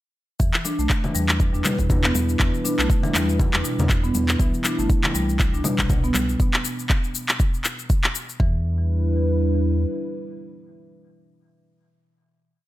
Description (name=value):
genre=afro house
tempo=120 BPM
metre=4/4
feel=swing 57% on 16ths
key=E minor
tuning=A4 = 441 Hz
part: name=dark analog pad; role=sustained chords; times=0.4-11.6 s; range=G3 to B4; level=-28 LUFS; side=equal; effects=chorus, sidechain pumping
part: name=marimba with medium hard mallets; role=arpeggios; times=0.4-8.6 s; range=B2 to D4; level=-27 LUFS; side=equal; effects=sidechain pumping, dub echo
part: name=round analog bass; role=bass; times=0.4-9.9 s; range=G1 to E2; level=-23 LUFS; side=equal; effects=sidechain pumping
part: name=electronic cabasa and handclaps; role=drums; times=0.4-8.4 s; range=none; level=-24 LUFS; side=left 1 dB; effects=overdrive
part: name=electronic kick drum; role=drums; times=0.4-8.5 s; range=none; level=-21 LUFS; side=equal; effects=overdrive
part: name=congas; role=percussion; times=0.7-6.3 s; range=none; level=-29 LUFS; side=left 2 dB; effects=none
room=digital ambience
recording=none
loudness=-19 LUFS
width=side -16 dB against mid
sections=0.4-8.4 groove; 8.4-12.4 final chord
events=none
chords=0.4 Em7; 4.4 Cmaj7; 8.4 Em7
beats=| 0.40 0.90 1.40 1.90 | 2.40 2.90 3.40 3.90 | 4.40 4.90 5.40 5.90 | 6.40 6.90 7.40 7.90 | 8.40 8.90 9.40 9.90 | 10.40 10.90 11.40